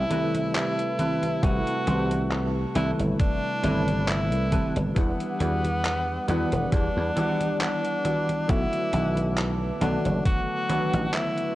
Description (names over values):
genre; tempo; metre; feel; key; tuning
vaporwave; 68 BPM; 4/4; swing 54% on 16ths; A dorian; A4 = 440 Hz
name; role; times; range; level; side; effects
bright tenor saxophone; melody; 0.0-11.6 s; B3 to F#4; -28 LUFS; equal; tape echo
bell-like tine electric piano; accompaniment; 0.0-11.6 s; C3 to F#5; -30 LUFS; equal; medium stereo tremolo, ensemble chorus
warbly tape-like pad; sustained chords; 0.0-11.6 s; G3 to D6; -39 LUFS; right 2 dB; chorus, built-in reverb
dry thumbed slap bass; bass; 0.0-11.1 s; E1 to E2; -27 LUFS; equal; tube saturation
clean electric guitar; riff; 0.1-10.9 s; C4 to D5; -36 LUFS; equal; analog chorus
detuned 8-bit digital drum machine; drums; 0.1-11.5 s; congas, handclaps, hi-hat; -30 LUFS; right 1 dB; studio ambience
electronic kick drum; drums; 1.4-10.4 s; none; -25 LUFS; equal; studio ambience
room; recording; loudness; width
light reverb, digital ambience; worn, warbling old tape, cassette tape, warbly pitch drift; -23 LUFS; side -16 dB against mid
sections
0.0-11.6 A section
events
none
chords
0.0 Am9; 5.0 Em9; 8.5 Bm7